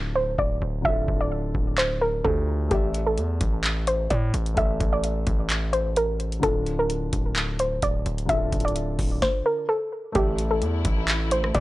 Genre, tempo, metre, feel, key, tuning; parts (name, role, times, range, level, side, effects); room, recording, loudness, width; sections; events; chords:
hip hop, trap; 129 BPM; 4/4; half-time; D minor; A4 = 438 Hz
dark baby grand piano; accompaniment; 0.0-11.6 s; D3 to E5; -33 LUFS; left 1 dB; low-pass filter
distorted 808-style bass; bass; 0.0-11.6 s; D1 to A2; -27 LUFS; equal; distortion
soft round pluck; melody; 0.2-11.6 s; G4 to E5; -26 LUFS; equal; chorus, low-pass filter, tape echo
booming analog drum machine; drums; 0.4-11.6 s; handclaps, hi-hat, kick drum, rim click, snare drum; -26 LUFS; equal
dark studio string section; sustained chords; 10.2-11.6 s; D3 to E4; -33 LUFS; left 2 dB
little or no reverb; dry, gritty hardware recording, transformer saturation; -22 LUFS; side -17 dB against mid
0.0-10.2 A section; 10.2-11.6 B section
break 0.0-2.7
0.0 Dm; 2.7 Asus4; 6.4 Dm; 10.2 Asus4